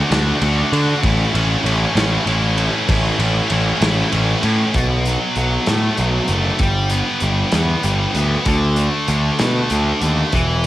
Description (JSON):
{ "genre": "indie rock", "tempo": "64 BPM (dotted quarters)", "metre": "6/8", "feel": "straight", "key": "unclear", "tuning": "A4 = 438 Hz", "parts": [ { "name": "heavy high-gain guitar", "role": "riff", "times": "0.0-10.7 s", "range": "A2 to F#4", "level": "-19 LUFS", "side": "equal", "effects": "distortion, cassette tape" }, { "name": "fuzz picked electric bass", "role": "bass", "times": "0.1-10.7 s", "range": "E1 to D3", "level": "-18 LUFS", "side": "equal", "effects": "overdrive" }, { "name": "loose indie drum kit", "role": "drums", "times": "0.1-10.7 s", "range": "hi-hat, kick drum, ride cymbal, snare drum", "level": "-23 LUFS", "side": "equal", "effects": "none" } ], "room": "small room ambience", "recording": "home recording on cassette", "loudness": "-15 LUFS", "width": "side -14 dB against mid", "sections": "0.0-4.7 A section; 4.7-10.7 B section", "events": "none", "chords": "0.0 D; 1.0 A; 4.7 B5; 6.6 G; 8.5 D5", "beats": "0.10 | 1.03 1.95 | 2.88 3.81 | 4.74 5.67 | 6.60 7.54 | 8.47 9.40 | 10.34" }